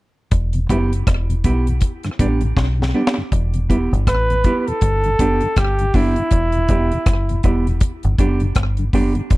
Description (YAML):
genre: roots reggae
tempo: 80 BPM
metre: 4/4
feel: swing 59% on 16ths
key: E minor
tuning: A4 = 440 Hz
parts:
  - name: deep dub fingered electric bass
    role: bass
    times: 0.3-9.4 s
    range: E1 to B1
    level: -19 LUFS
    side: equal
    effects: none
  - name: deep reggae drum kit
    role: drums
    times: 0.3-9.4 s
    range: hi-hat, kick drum, rim click, snare drum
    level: -18 LUFS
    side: equal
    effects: slapback echo
  - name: mellow tonewheel organ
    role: accompaniment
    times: 0.5-9.2 s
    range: E2 to E4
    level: -24 LUFS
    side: left 1 dB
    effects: chorus vibrato, slow rotary speaker
  - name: mellow electric guitar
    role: accompaniment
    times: 0.7-9.2 s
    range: B3 to G4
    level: -23 LUFS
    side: right 3 dB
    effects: spring reverb, tape echo
  - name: warm flugelhorn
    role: melody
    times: 4.1-7.4 s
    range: E4 to B4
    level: -20 LUFS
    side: equal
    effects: tape echo
room: little or no reverb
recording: dry, close 1970s-style studio recording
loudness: -15 LUFS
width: side -20 dB against mid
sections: 0.3-3.3 A section; 3.3-9.4 B section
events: drum fill 2.6-3.3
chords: 0.3 Em; 1.8 G; 3.3 Em; 4.8 G; 6.3 Em; 7.8 G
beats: | 0.32 1.06 1.81 2.56 | 3.31 4.07 4.81 5.56 | 6.31 7.06 7.81 8.56 | 9.31